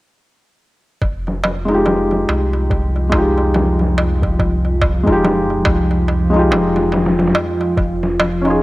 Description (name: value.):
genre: trip hop.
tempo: 71 BPM.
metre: 4/4.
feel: swing 60% on 16ths.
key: F minor.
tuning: A4 = 439 Hz.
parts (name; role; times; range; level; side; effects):
dark analog pad; sustained chords; 1.0-8.6 s; F3 to F4; -20 LUFS; equal; chorus, cassette tape.
soft dub sub bass; bass; 1.0-8.6 s; Eb1 to C2; -20 LUFS; equal; tube saturation.
boom bap sampler-style drum kit; drums; 1.0-8.4 s; hi-hat, kick drum, snare drum; -20 LUFS; equal; overdrive, low-pass filter on hats, vintage 12-bit sampler grit, cassette tape, low-pass filter on kick, low-pass filter on snare.
darbuka; percussion; 1.0-8.6 s; none; -22 LUFS; right 1 dB; none.
felt-muted upright piano; accompaniment; 1.7-8.6 s; Ab3 to Ab4; -18 LUFS; equal; harmonic tremolo, cassette tape, tape echo.
room: light reverb.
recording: home recording on cassette.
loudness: -14 LUFS.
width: side -18 dB against mid.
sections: 1.0-8.6 A section.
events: filter sweep on analog synth pad 1.0-8.6.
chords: 1.0 Fm9; 7.8 Dbadd9/F.